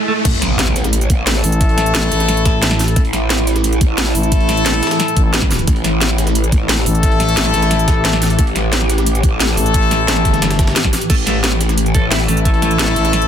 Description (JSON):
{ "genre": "dark technical drum and bass", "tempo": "177 BPM", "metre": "4/4", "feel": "straight", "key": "unclear", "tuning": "A4 = 439 Hz", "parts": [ { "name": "riser and impact", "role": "sound effects", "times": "0.0-1.6 s", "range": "none", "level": "-21 LUFS", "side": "right 1 dB", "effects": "none" }, { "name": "clean electric guitar", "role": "arpeggios", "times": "0.1, 11.1-12.8 s", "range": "A3 to A4", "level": "-22 LUFS", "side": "right 2 dB", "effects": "spring reverb, sidechain pumping, ping-pong delay" }, { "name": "swarming drone", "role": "sustained chords", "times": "0.2-13.3 s", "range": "A2 to G4", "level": "-22 LUFS", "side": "right 1 dB", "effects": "built-in reverb, sidechain pumping" }, { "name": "drum and bass drum kit", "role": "drums", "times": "0.2-13.3 s", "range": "crash cymbal, hi-hat, snare drum", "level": "-18 LUFS", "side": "equal", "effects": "high-pass filter on snare, high-pass filter on hats, high-pass filter on cymbals, high-pass filter on room" }, { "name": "growl bass", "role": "bass", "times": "0.3-12.3 s", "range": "A1", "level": "-17 LUFS", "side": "equal", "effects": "chorus, overdrive, sidechain pumping" }, { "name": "breakbeat sampler-style drum kit", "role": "drums", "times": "0.3-13.2 s", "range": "hi-hat, snare drum", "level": "-27 LUFS", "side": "right 1 dB", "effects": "none" }, { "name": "electronic kick drum", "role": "drums", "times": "0.3-12.5 s", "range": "none", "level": "-15 LUFS", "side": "equal", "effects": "none" }, { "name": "warm brass ensemble", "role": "stabs", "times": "1.2-13.3 s", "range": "A3 to A4", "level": "-19 LUFS", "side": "left 5 dB", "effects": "ping-pong delay" }, { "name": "growling FM bass", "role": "bass", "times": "1.4-13.3 s", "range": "G1 to A1", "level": "-17 LUFS", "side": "equal", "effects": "none" } ], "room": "little or no reverb", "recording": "dense, heavily limited modern master", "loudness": "-12 LUFS", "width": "side -9 dB against mid", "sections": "0.3-13.3 A section", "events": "break 0.0; riser 0.0; drop 0.3-13.3; impact 0.3-1.6", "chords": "0.3 A5" }